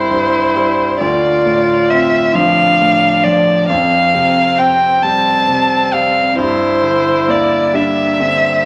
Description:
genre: neoclassical piano and strings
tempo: 45 BPM (dotted quarters)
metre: 6/8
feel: rubato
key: D minor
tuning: A4 = 439 Hz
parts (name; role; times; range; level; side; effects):
- rich violin; melody; 0.0-8.7 s; C5 to A5; -15 LUFS; equal; none
- rich cello; second line; 0.0-8.7 s; C4 to F4; -19 LUFS; equal; none
- bright grand piano; accompaniment; 0.0-8.7 s; C2 to C4; -22 LUFS; equal; none
room: wet large studio reverb, RT60 1.4 s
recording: vinyl crackle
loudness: -13 LUFS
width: mono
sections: 0.0-8.7 A section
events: none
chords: 0.0 C; 1.0 Dm7; 3.7 Fsus2; 6.4 Gm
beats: | 1.01 2.35 | 3.69 5.03 | 6.38 7.74

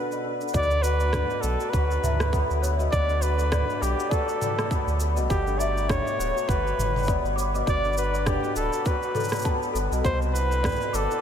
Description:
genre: folktronica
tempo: 101 BPM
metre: 4/4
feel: swing 56% on 16ths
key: D major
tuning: A4 = 440 Hz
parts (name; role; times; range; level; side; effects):
- warm flugelhorn; melody; 0.0-11.2 s; G4 to D5; -27 LUFS; equal; ping-pong delay
- hammered dulcimer; arpeggios; 0.0-11.2 s; B2 to B3; -31 LUFS; left 4 dB; vintage 12-bit sampler grit, ping-pong delay
- organic electronic drum kit; drums; 0.1-11.2 s; rim click, shaker, toms; -33 LUFS; right 2 dB; overdrive
- worn celesta; second line; 0.5-11.2 s; A4 to D6; -33 LUFS; left 2 dB; ensemble chorus, tape echo
- warm sub bass; bass; 0.5-11.1 s; D1 to D2; -26 LUFS; right 1 dB; none
- electronic kick drum; drums; 0.5-10.8 s; none; -28 LUFS; right 1 dB; none
room: moderate huge ambient reverb, RT60 7.7 s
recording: dreamy mix soaked in reverb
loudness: -22 LUFS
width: side -8 dB against mid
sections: 0.5-11.2 A section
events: none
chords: 0.0 Bm; 0.5 D6; 5.3 Gmaj7; 10.0 Cmaj7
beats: | 0.54 1.14 1.73 2.32 | 2.92 3.51 4.11 4.70 | 5.29 5.89 6.48 7.08 | 7.67 8.27 8.86 9.45 | 10.05 10.64

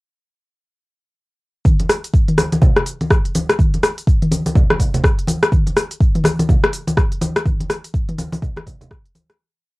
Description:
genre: house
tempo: 124 BPM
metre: 4/4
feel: swing 60% on 16ths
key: none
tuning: none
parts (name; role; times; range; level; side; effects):
- afro-pop drum kit; drums; 1.7-9.4 s; cabasa, hi-hat, rim click, toms; -18 LUFS; left 1 dB; cassette tape
- electronic kick drum; drums; 1.7-9.0 s; none; -15 LUFS; equal; cassette tape
- congas; percussion; 1.8-9.3 s; none; -21 LUFS; equal; none
room: moderate booth ambience, RT60 0.2 s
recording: home recording on cassette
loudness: -14 LUFS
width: side -22 dB against mid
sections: 1.7-9.4 drop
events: drop 1.7-9.4; fade-out 6.8-9.4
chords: none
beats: | 1.65 2.14 2.62 3.10 | 3.59 4.07 4.56 5.04 | 5.52 6.01 6.49 6.97 | 7.46 7.94 8.43 8.91

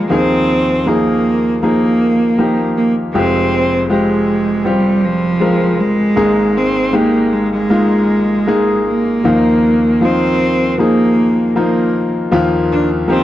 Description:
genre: pop ballad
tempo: 78 BPM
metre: 4/4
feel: straight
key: Eb major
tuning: A4 = 440 Hz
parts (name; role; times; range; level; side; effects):
- warm cello; melody; 0.0-13.2 s; F3 to D4; -14 LUFS; right 2 dB; slapback echo
- bright concert grand piano; accompaniment; 0.0-13.2 s; F1 to Bb4; -15 LUFS; left 2 dB; none
room: light reverb, studio reverb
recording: dry, close 1970s-style studio recording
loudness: -12 LUFS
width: side -13 dB against mid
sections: 0.0-13.2 A section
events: none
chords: 0.0 Ebsus2; 3.1 Fmadd9; 6.2 Absus2; 9.3 Ebsus2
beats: | 0.09 0.85 1.62 2.38 | 3.15 3.90 4.66 5.42 | 6.17 6.94 7.71 8.48 | 9.25 10.02 10.79 11.55 | 12.32 13.09

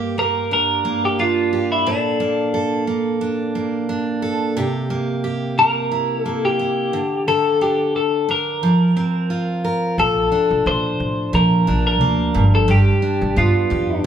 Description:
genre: acoustic pop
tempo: 89 BPM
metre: 4/4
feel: swing 55% on 16ths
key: G dorian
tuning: A4 = 440 Hz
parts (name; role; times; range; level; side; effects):
- picked steel-string acoustic guitar; accompaniment; 0.0-14.1 s; G2 to Bb4; -20 LUFS; right 1 dB; none
- twelve-string electric guitar; melody; 0.2-14.0 s; D4 to C5; -19 LUFS; left 1 dB; none
- upright bass; bass; 10.0-14.0 s; G1 to Bb2; -21 LUFS; equal; none
room: wet large studio reverb, RT60 1.1 s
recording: band playing live in one room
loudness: -16 LUFS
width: side -9 dB against mid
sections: 0.0-10.0 A section; 10.0-14.1 B section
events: none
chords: 0.0 Gm; 1.9 Bbmaj7; 4.6 C7; 6.9 D5; 8.6 Fsus4; 10.0 Bbmaj7; 12.4 G7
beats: 0.51 1.19 | 1.86 2.54 3.21 3.89 | 4.57 5.24 5.92 6.60 | 7.27 7.95 8.63 9.30 | 9.98 10.66 11.34 12.01 | 12.69 13.37 14.04

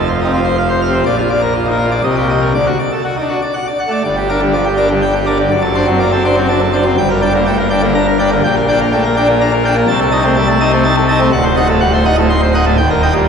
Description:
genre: classical, organ toccata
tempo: 123 BPM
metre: 3/4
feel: straight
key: G minor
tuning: A4 = 440 Hz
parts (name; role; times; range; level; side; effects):
- pipe organ, full organ; solo; 0.0-13.3 s; D1 to C6; -11 LUFS; equal; none
room: wet church reverb, RT60 3.7 s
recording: heard from further back in the room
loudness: -11 LUFS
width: side -6 dB against mid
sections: 0.0-4.0 A section; 4.0-13.3 B section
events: none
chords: 0.0 F5; 1.1 Bb; 2.0 Cm7; 2.5 D; 4.0 Gm; 5.5 D7/F#; 7.0 Gm; 8.4 Gm/Bb; 9.9 Adim/C; 11.3 D7b9; 12.8 Eb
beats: 0.08 0.57 | 1.06 1.54 2.04 | 2.54 3.04 3.54 | 4.05 4.54 5.03 | 5.52 6.00 6.49 | 6.97 7.46 7.95 | 8.44 8.92 9.41 | 9.89 10.37 10.85 | 11.33 11.81 12.29 | 12.78 13.26

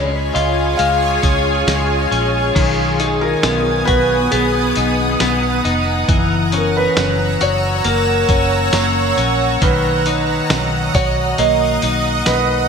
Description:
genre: dream pop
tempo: 68 BPM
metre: 4/4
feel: straight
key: unclear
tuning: A4 = 440 Hz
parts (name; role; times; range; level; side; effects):
- felt-muted upright piano; melody; 0.0-12.7 s; G#4 to E#5; -20 LUFS; right 2 dB; lush chorus, ping-pong delay
- shimmering ambient pad; sustained chords; 0.0-12.7 s; B3 to E6; -19 LUFS; right 1 dB; chorus, built-in reverb
- clean electric guitar; arpeggios; 0.0-12.7 s; D#3 to F#4; -20 LUFS; left 4 dB; wide subtle chorus, ping-pong delay
- vintage muted fingered electric bass; bass; 0.0-12.7 s; E#1 to C#2; -21 LUFS; right 1 dB; none
- lo-fi sampler-style drum kit; drums; 0.4-12.5 s; crash cymbal, hi-hat, kick drum, snare drum, tambourine; -20 LUFS; equal; gated reverb
room: moderate lush hall reverb, RT60 2.2 s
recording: bright 1980s-style digital production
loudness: -13 LUFS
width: side -6 dB against mid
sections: 0.0-2.6 A section; 2.6-12.7 B section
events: none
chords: 0.0 C#; 2.6 G#m7/B; 6.1 F#7; 9.6 Bmaj7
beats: 0.80 1.68 | 2.56 3.44 4.33 5.21 | 6.09 6.97 7.86 8.74 | 9.62 10.50 11.38 12.27

